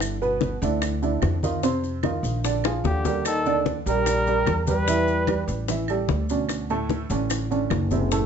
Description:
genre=Afro-Cuban jazz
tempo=148 BPM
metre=4/4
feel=straight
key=unclear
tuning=A4 = 439 Hz
part: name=clear upright piano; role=accompaniment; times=0.0-8.3 s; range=A2 to E5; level=-26 LUFS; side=right 4 dB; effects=none
part: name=upright bass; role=bass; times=0.0-8.3 s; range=F#1 to F2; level=-27 LUFS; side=equal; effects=none
part: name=bongos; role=percussion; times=0.0-8.3 s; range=none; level=-30 LUFS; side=left 10 dB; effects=none
part: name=claves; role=percussion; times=0.0-7.9 s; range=none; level=-36 LUFS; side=right 8 dB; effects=none
part: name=congas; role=percussion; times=0.0-8.3 s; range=none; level=-31 LUFS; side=left 3 dB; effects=none
part: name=maracas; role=percussion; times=0.0-8.3 s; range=none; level=-38 LUFS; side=left 6 dB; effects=none
part: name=growling trombone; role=second line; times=2.8-5.4 s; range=D3 to G3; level=-29 LUFS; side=left 5 dB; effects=none
part: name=warm trumpet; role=melody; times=2.9-5.5 s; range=G4 to B4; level=-25 LUFS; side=right 1 dB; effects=slapback echo
room=moderate studio reverb, RT60 0.6 s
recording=nothing above 7.9 kHz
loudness=-21 LUFS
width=side -7 dB against mid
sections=0.0-8.3 A section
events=drum fill 2.6-3.3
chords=0.0 G6; 1.6 F5; 2.4 Bb6; 3.3 Ebmaj7; 4.9 Em; 5.7 A9; 6.5 Dmaj7

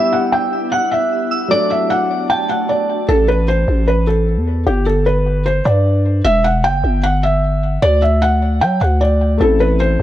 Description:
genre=hip hop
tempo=152 BPM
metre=4/4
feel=half-time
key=A dorian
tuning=A4 = 440 Hz
part: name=felt-muted upright piano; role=melody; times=0.0-10.0 s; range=G4 to G5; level=-16 LUFS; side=equal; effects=low-pass filter, ping-pong delay
part: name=soft synth bell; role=second line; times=0.0-3.0 s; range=A5 to F#6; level=-26 LUFS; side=right 3 dB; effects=chorus, phaser, ping-pong delay
part: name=dark grand piano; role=accompaniment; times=0.0-3.1, 9.4-10.0 s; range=F#3 to A4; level=-22 LUFS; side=left 5 dB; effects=low-pass filter
part: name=ethereal airy pad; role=sustained chords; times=0.0-3.1 s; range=A3 to E5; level=-25 LUFS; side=right 1 dB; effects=ensemble chorus, built-in reverb, low-pass filter
part: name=growling 808-style bass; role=bass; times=3.1-10.0 s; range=E1 to F#3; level=-15 LUFS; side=equal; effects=none
room=light reverb, small room ambience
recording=none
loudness=-13 LUFS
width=side -13 dB against mid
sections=0.0-3.1 A section; 3.1-10.0 B section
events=none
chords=0.0 Em; 1.5 D; 3.1 Am; 4.7 G; 6.2 Em; 7.8 D; 9.4 Am

